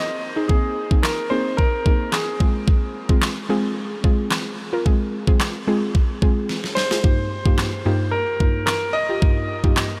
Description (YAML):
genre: dance-pop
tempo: 110 BPM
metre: 4/4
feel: straight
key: unclear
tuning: A4 = 442 Hz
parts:
  - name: warm grand piano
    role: melody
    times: 0.0-2.5, 6.8-10.0 s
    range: Ab4 to Eb5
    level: -28 LUFS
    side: equal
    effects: tape echo
  - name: soft round pluck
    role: accompaniment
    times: 0.0-9.8 s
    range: G2 to Bb4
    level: -26 LUFS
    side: equal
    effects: chorus, sidechain pumping
  - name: pop drum kit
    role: drums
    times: 0.5-9.9 s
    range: handclaps, kick drum, snare drum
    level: -23 LUFS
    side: equal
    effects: overdrive
room: light reverb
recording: none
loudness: -21 LUFS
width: mono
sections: 0.0-10.0 A section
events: drum fill 6.5-7.0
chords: 0.0 Abadd9; 2.4 Fm; 7.0 Ebadd9/G